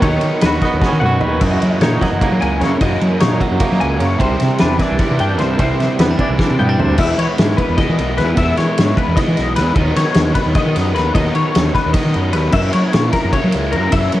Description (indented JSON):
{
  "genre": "math rock and midwest emo",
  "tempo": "302 BPM (eighths)",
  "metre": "7/8",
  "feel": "straight",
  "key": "unclear",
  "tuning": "A4 = 440 Hz",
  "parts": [
    { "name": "twangy electric guitar", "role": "accompaniment", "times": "0.0-7.0 s", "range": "F#2 to F#4", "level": "-20 LUFS", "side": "right 4 dB", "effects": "tremolo, cassette tape" },
    { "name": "twelve-string electric guitar", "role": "arpeggios", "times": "0.0-14.2 s", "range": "A#4 to G#5", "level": "-22 LUFS", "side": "left 5 dB", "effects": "ensemble chorus, cassette tape, analog delay" },
    { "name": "overdriven electric guitar", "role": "riff", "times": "0.0-14.2 s", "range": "F#2 to E4", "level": "-21 LUFS", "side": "right 1 dB", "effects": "cassette tape" },
    { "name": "fuzz fingered electric bass", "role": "bass", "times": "0.0-14.2 s", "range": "B1 to F#3", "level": "-18 LUFS", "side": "equal", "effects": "overdrive" },
    { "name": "loose indie drum kit", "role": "drums", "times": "0.0-14.2 s", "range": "crash cymbal, kick drum, ride cymbal, snare drum, toms", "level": "-18 LUFS", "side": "equal", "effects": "cassette tape" }
  ],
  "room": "little or no reverb",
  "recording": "home recording on cassette",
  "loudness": "-13 LUFS",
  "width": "side -14 dB against mid",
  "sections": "0.0-7.0 A section; 7.0-14.2 B section",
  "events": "drum fill 0.8-1.4, 6.4-7.0",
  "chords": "0.0 Badd9/D#; 1.4 F#13; 4.2 Cmaj9; 7.0 Emaj7; 9.8 Badd9/D#; 12.5 F#7"
}